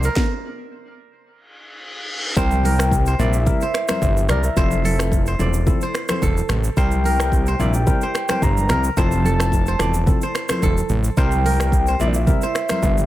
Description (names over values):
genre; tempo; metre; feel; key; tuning
afrobeats; 109 BPM; 4/4; swing 55% on 16ths; C mixolydian; A4 = 441 Hz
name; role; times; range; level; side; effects
kora; riff; 0.0-13.1 s; A4 to E5; -27 LUFS; right 4 dB; diffuse ambient delay
fat analog bass; bass; 0.0-13.1 s; E1 to C2; -20 LUFS; equal; none
afro-pop drum kit; drums; 0.0-13.1 s; finger snaps, hi-hat, kick drum, rim click, shaker, snare drum; -22 LUFS; equal; none
reverse cymbal; sound effects; 1.5-2.4 s; none; -28 LUFS; left 1 dB; none
soft octave-layered synth lead; melody; 2.4-13.1 s; D5 to Bb5; -24 LUFS; left 1 dB; chorus, phaser, diffuse ambient delay
tine electric piano; accompaniment; 2.4-12.8 s; F3 to Bb4; -26 LUFS; left 4 dB; overdrive
congas; percussion; 2.5-13.1 s; none; -28 LUFS; right 2 dB; none
room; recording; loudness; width
light reverb; none; -16 LUFS; side -14 dB against mid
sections
0.0-2.4 A section; 2.4-13.1 B section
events
stop 0.2-2.4; reverse cymbal 1.5-2.4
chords
0.2 N.C.; 2.4 C7; 4.6 Fmaj7; 6.8 C7; 9.0 Fmaj7; 11.2 C7